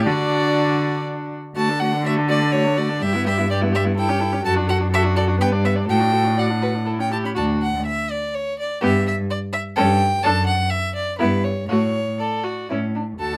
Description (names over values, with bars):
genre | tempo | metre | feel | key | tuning
quick classical-period movement for string quartet | 118-128 BPM | 3/4 | rubato | D major | A4 = 442 Hz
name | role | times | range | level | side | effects
rich violin | melody | 0.0-13.4 s | B4 to B5 | -26 LUFS | equal | none
dark violin | second line | 0.0-13.4 s | D4 to D5 | -28 LUFS | equal | none
warm viola | accompaniment | 0.0-13.4 s | G3 to F#4 | -28 LUFS | equal | none
warm cello | bass | 0.0-13.4 s | D2 to D3 | -24 LUFS | equal | none
room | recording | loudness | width
light reverb | close, detailed microphones | -21 LUFS | mono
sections
0.0-1.6 A section; 1.6-13.2 A section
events
none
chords
0.1 D; 3.0 Em/G; 4.0 A7/G; 4.4 D/F#; 5.4 G; 5.9 D/A; 6.9 A; 7.4 D; 8.8 G6; 9.8 A7/G; 10.2 D/F#; 11.2 Em/G; 11.7 D/A; 12.7 A